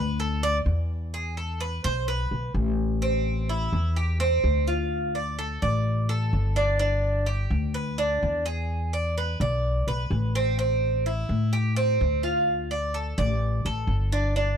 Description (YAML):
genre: latin, Cuban son and guajira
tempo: 127 BPM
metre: 4/4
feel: straight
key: A minor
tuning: A4 = 440 Hz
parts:
  - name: Cuban tres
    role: arpeggios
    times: 0.0-14.6 s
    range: C4 to D5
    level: -27 LUFS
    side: right 2 dB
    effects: none
  - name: upright bass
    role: bass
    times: 0.0-14.6 s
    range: G1 to A2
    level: -25 LUFS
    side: left 1 dB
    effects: none
room: studio reverb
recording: dry, close 1970s-style studio recording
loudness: -23 LUFS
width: side -8 dB against mid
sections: 0.0-3.0 A section; 3.0-14.6 B section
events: Cuban tres solo 0.0-3.0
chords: 0.0 N.C.; 1.1 E5; 3.0 Am7; 4.9 Dm; 6.8 G; 8.7 E7(no3); 10.6 Am7; 12.5 Dm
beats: 0.19 0.67 | 1.14 1.61 2.08 2.55 | 3.03 3.50 3.97 4.44 | 4.92 5.39 5.86 6.33 | 6.80 7.28 7.75 8.22 | 8.69 9.16 9.64 10.11 | 10.58 11.05 11.53 12.00 | 12.47 12.94 13.41 13.89 | 14.36